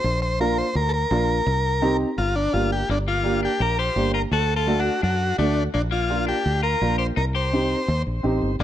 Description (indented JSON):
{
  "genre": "latin",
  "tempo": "168 BPM",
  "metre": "4/4",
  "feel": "straight",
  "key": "G minor",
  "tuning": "A4 = 440 Hz",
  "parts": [
    { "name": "combo organ", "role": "melody", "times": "0.0-8.6 s", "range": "D4 to C5", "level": "-24 LUFS", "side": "left 1 dB", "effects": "tape echo" },
    { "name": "fingered electric bass", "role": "bass", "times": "0.0-8.6 s", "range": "G1 to F#2", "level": "-24 LUFS", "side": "equal", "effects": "none" },
    { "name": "dark upright piano", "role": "accompaniment", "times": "0.4-8.5 s", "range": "A3 to G4", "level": "-25 LUFS", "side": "right 2 dB", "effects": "none" },
    { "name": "clean electric guitar", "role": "second line", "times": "2.9-8.6 s", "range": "A3 to G4", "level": "-30 LUFS", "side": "left 14 dB", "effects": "none" }
  ],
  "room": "little or no reverb",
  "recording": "dry, close 1970s-style studio recording",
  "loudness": "-20 LUFS",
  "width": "side -11 dB against mid",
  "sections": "0.0-2.9 A section; 2.9-8.6 B section",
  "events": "transistor combo organ solo 0.0-2.9",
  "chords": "0.0 Bb; 1.5 Cm; 2.2 Gm; 4.3 D; 5.7 Bb; 7.2 Cm"
}